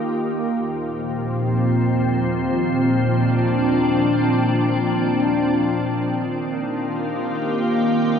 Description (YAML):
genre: ambient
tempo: free time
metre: none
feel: none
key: Eb major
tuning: A4 = 440 Hz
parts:
  - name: soft additive organ-like pad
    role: solo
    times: 0.0-8.2 s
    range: Eb2 to G4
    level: -18 LUFS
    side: equal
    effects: ensemble chorus, built-in reverb
room: wet huge ambient reverb, RT60 7.5 s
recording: none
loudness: -18 LUFS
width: side -7 dB against mid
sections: 0.0-8.2 A section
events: none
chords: 0.1 Eb69